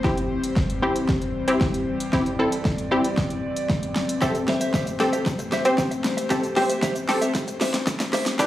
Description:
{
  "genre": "dance-pop",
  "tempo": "115 BPM",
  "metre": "4/4",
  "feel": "straight",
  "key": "A minor",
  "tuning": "A4 = 440 Hz",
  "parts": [
    { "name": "wide unison pluck", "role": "accompaniment", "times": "0.0-8.5 s", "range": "C4 to C5", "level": "-23 LUFS", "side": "equal", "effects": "plate reverb, slapback echo" },
    { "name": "airy breathy pad", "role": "sustained chords", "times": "0.0-8.5 s", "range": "E3 to D5", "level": "-29 LUFS", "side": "left 2 dB", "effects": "chorus, sidechain pumping" },
    { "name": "deep house drum kit", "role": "drums", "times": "0.0-8.5 s", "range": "hi-hat, kick drum, shaker, snare drum", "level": "-25 LUFS", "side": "equal", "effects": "none" },
    { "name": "direct-recorded clean electric guitar", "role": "riff", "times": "4.2-8.5 s", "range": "D4 to E5", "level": "-28 LUFS", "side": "right 1 dB", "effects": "wide subtle chorus, slapback echo" },
    { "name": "tube shaker", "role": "percussion", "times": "4.2-8.5 s", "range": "none", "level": "-42 LUFS", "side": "left 2 dB", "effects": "none" }
  ],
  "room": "moderate club reverb, RT60 0.5 s",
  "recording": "live gig heard through the venue's PA, club reverb, high-pass filter",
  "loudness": "-21 LUFS",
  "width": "side -13 dB against mid",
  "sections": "0.0-8.5 A section",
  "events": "build-up 0.0-8.5; drum fill 0.0-8.5; filter sweep 0.0-8.5",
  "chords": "0.0 C; 4.2 Am7"
}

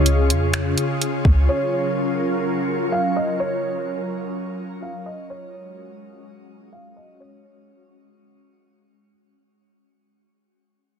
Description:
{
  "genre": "hip hop, atmospheric cloud-rap",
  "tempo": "126 BPM",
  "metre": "4/4",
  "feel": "half-time",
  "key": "unclear",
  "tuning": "A4 = 439 Hz",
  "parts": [
    { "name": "felt-muted upright piano", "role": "melody", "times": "0.0-9.1 s", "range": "Db5 to F5", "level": "-27 LUFS", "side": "right 1 dB", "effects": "low-pass filter, tape echo" },
    { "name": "ethereal airy pad", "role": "sustained chords", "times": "0.0-9.1 s", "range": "Db3 to Bb4", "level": "-24 LUFS", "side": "equal", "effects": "ensemble chorus, built-in reverb, sidechain pumping, low-pass filter" },
    { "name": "clean 808-style bass", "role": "bass", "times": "0.0-1.5 s", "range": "Db2 to F2", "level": "-18 LUFS", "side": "equal", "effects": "none" },
    { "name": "smooth R&B drum kit", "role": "drums", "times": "0.1-1.4 s", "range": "finger snaps, hi-hat, kick drum", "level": "-22 LUFS", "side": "equal", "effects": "soft clipping on snare" }
  ],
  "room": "light reverb, digital ambience",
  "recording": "dense, heavily limited modern master",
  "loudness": "-19 LUFS",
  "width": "side -7 dB against mid",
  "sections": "0.0-9.1 A section",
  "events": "fade-out 0.0-9.1; filter sweep 0.0-9.1",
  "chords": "0.0 Db; 1.5 Gbmaj7; 5.3 Ab7sus4"
}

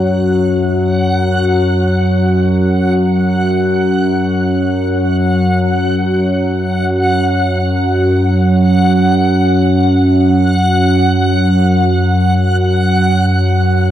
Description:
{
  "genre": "dark ambient drone",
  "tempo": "free time",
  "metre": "none",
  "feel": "none",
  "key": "unclear",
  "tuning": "A4 = 440 Hz",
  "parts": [
    { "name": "gamelan-type bossed gongs", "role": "arpeggios", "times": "0.0-2.6 s", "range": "none", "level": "barely audible", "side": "none", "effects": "none" },
    { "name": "analog drone", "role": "drone", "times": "0.0-13.9 s", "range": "F#2 to F#3", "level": "-11 LUFS", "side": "equal", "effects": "chorus" },
    { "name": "backwards swelling texture", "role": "texture", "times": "0.0-13.9 s", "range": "F#5", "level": "-19 LUFS", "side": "equal", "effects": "built-in reverb, shimmer reverb" }
  ],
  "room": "wet huge ambient reverb, RT60 7.9 s",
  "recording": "worn, warbling old tape, cassette tape, warbly pitch drift",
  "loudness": "-11 LUFS",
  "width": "side -11 dB against mid",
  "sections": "0.0-13.9 A section",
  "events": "fade-in on synth texture 0.0-13.9",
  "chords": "0.0 F#5"
}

